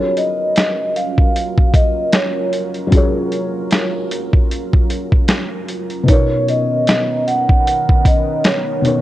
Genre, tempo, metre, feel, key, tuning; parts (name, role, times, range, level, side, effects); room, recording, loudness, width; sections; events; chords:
lo-fi hip hop; 76 BPM; 4/4; swing 57% on 16ths; F# major; A4 = 441 Hz
vibraphone with medium mallets; melody; 0.0-8.8 s; C#5 to F#5; -18 LUFS; right 1 dB
felt-muted upright piano; accompaniment; 0.0-9.0 s; B2 to C#5; -21 LUFS; left 2 dB; cassette tape
deep dark ambient pad; sustained chords; 0.0-9.0 s; D#3 to A#4; -24 LUFS; right 2 dB; chorus, built-in reverb
boom bap sampler-style drum kit; drums; 0.2-9.0 s; hi-hat, kick drum, snare drum; -14 LUFS; equal; vintage 12-bit sampler grit
light reverb, studio reverb; worn, warbling old tape, cassette tape, warbly pitch drift; -13 LUFS; side -14 dB against mid
0.0-9.0 A section
0.0 F#maj7; 6.1 Bmaj9